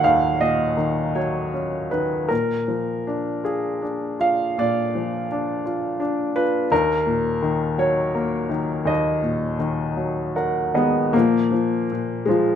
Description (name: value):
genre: classical, lyrical solo piano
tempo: 51-59 BPM (dotted quarters)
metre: 6/8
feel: rubato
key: Eb minor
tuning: A4 = 438 Hz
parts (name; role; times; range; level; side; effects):
- clear upright piano; solo; 0.0-12.6 s; Eb2 to Gb5; -20 LUFS; equal; none
room: moderate recital hall reverb, RT60 1.4 s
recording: none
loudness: -20 LUFS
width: side -8 dB against mid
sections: 0.0-11.1 A section; 11.1-12.6 A section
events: upright piano fill 10.0-11.1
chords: 0.0 Ebm7; 2.3 Bb7; 6.7 Ebm7; 11.1 Bb7(no3)